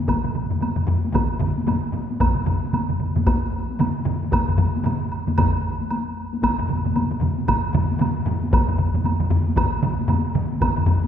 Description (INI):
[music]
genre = japanese traditional, taiko drum ensemble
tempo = 114 BPM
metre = 4/4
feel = swing 60% on 16ths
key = none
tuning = none
[part]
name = taiko ensemble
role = percussion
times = 0.1-11.1 s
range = none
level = -27 LUFS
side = left 3 dB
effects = none
[part]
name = taiko ensemble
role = percussion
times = 0.1-11.0 s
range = none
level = -24 LUFS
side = left 2 dB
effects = none
[part]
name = taiko ensemble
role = percussion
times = 0.1-11.0 s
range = none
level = -26 LUFS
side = right 4 dB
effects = none
[part]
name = taiko ensemble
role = percussion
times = 0.1-10.8 s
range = none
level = -25 LUFS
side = equal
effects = none
[part]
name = woodblock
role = percussion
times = 0.1-10.8 s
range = none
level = -29 LUFS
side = right 3 dB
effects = none
[sound]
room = wet concert hall reverb, RT60 2.1 s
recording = heard from further back in the room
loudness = -19 LUFS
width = side -9 dB against mid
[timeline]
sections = 0.0-11.1 A section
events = none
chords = none